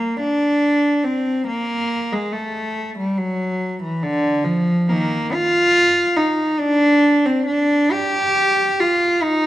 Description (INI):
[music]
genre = classical, baroque-style suite movement for unaccompanied cello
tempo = 70 BPM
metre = 3/4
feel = rubato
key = G minor from 4.9 s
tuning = A4 = 439 Hz
[part]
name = rich cello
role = solo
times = 0.0-9.5 s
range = D3 to G4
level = -16 LUFS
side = equal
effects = none
[sound]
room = wet recital hall reverb, RT60 1.6 s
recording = none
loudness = -16 LUFS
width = side -14 dB against mid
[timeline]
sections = 0.0-9.5 A section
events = none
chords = none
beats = 0.63 1.47 | 2.33 3.18 4.03 | 4.90 5.76 6.60 | 7.47 8.37 9.23